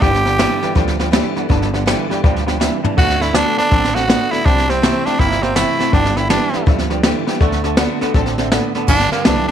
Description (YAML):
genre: rockabilly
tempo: 162 BPM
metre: 4/4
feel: swing 63% on 8ths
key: G major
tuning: A4 = 441 Hz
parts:
  - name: growling tenor saxophone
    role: melody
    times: 0.0-0.8, 3.0-6.6, 8.9-9.5 s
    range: Bb3 to G4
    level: -17 LUFS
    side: right 2 dB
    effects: none
  - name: honky-tonk upright piano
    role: accompaniment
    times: 0.0-9.4 s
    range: A4 to B5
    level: -26 LUFS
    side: left 12 dB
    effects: none
  - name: picked steel-string acoustic guitar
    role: accompaniment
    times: 0.0-9.5 s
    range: G2 to G4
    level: -25 LUFS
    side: left 12 dB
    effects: none
  - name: twangy electric guitar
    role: riff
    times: 0.0-9.5 s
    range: G2 to C4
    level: -22 LUFS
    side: right 13 dB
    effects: none
  - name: upright bass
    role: bass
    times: 0.0-9.5 s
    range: G1 to D2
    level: -21 LUFS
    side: left 1 dB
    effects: none
  - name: jazz brush drum kit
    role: drums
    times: 0.0-9.4 s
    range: crash cymbal, hi-hat, kick drum, snare drum, toms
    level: -17 LUFS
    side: equal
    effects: none
room: light reverb, small room ambience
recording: 1960s-style stereo with parts hard left and right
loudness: -13 LUFS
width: side -9 dB against mid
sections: 0.0-8.9 A section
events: honky-tonk piano fill 2.2-3.0; drum fill 2.6-3.0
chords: 0.0 G; 3.0 D; 4.5 C; 5.9 G; 7.4 D; 8.9 G